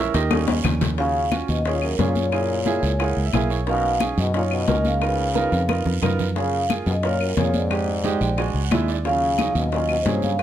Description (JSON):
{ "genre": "Afro-Cuban jazz", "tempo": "178 BPM", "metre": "4/4", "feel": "straight", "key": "Eb minor", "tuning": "A4 = 440 Hz", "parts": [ { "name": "clear baby grand piano", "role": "accompaniment", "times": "0.0-10.4 s", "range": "E3 to Ab5", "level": "-26 LUFS", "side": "right 6 dB", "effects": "none" }, { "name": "fingered electric bass", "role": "bass", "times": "0.0-10.4 s", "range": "Bb1 to G2", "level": "-24 LUFS", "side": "equal", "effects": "none" }, { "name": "congas", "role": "percussion", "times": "0.1-10.4 s", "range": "none", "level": "-27 LUFS", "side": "left 2 dB", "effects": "none" }, { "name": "cowbell and bongos", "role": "percussion", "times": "0.1-10.4 s", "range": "none", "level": "-29 LUFS", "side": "left 8 dB", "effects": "none" }, { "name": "guiro", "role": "percussion", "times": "0.1-10.4 s", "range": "none", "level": "-36 LUFS", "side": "right 8 dB", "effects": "none" }, { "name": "claves", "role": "percussion", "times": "0.3-10.4 s", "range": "none", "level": "-33 LUFS", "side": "left 8 dB", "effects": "none" }, { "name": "vibraphone with soft mallets", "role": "melody", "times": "1.0-10.4 s", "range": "Bb4 to F5", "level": "-25 LUFS", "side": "equal", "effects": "slapback echo" }, { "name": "trombone with plunger mute", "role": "second line", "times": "1.0-10.4 s", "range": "Gb2 to Db3", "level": "-29 LUFS", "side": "left 5 dB", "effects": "none" } ], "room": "light reverb", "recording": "none", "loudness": "-19 LUFS", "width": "side -11 dB against mid", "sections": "1.0-10.4 A section", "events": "drum fill 0.3-1.0, 5.7-6.4; grand piano fill 2.7-3.7, 8.0-9.1", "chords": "0.3 D#7; 1.0 Ebm9; 2.3 Gb9; 3.7 Bmaj7; 5.0 Db13; 6.4 Gbmaj9; 7.7 Fm9; 8.4 Bb7alt; 9.1 Ebm9" }